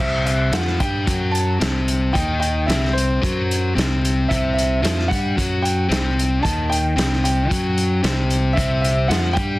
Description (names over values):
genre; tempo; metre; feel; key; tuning
indie rock; 112 BPM; 4/4; straight; unclear; A4 = 440 Hz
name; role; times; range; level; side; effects
warm upright piano; melody; 0.0-9.6 s; C5 to A5; -25 LUFS; right 1 dB; analog delay
overdriven electric guitar; riff; 0.0-9.6 s; C3 to G4; -22 LUFS; left 2 dB; none
modern bright picked electric bass; bass; 0.0-9.6 s; C2 to G2; -21 LUFS; equal; none
vintage drum kit; drums; 0.3-9.5 s; hi-hat, kick drum, snare drum; -24 LUFS; equal; none
room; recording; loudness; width
little or no reverb; dense, heavily limited modern master; -17 LUFS; side -19 dB against mid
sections
0.0-9.6 A section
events
none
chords
0.0 C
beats
0.53 1.07 1.61 | 2.15 2.68 3.22 3.76 | 4.29 4.83 5.36 5.90 | 6.43 6.97 7.50 8.04 | 8.57 9.11